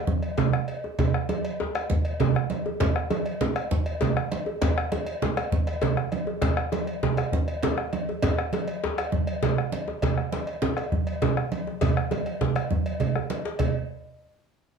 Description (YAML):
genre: west african traditional, West African drum ensemble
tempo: 133 BPM (dotted quarters)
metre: 12/8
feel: straight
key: none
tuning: none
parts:
  - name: bombo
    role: percussion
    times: 0.1-13.7 s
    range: none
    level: -27 LUFS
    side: left 1 dB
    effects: none
  - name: congas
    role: percussion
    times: 0.1-13.7 s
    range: none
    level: -27 LUFS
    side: right 7 dB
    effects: none
  - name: cowbell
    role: percussion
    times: 0.2-13.7 s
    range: none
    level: -34 LUFS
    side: equal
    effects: none
  - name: djembe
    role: percussion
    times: 0.4-13.7 s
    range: none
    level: -30 LUFS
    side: left 4 dB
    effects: none
room: wet studio ambience, RT60 0.5 s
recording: small room reverb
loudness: -24 LUFS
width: side -6 dB against mid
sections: 0.0-13.6 A section; 13.6-14.8 B section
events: drum fill 13.0-13.6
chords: none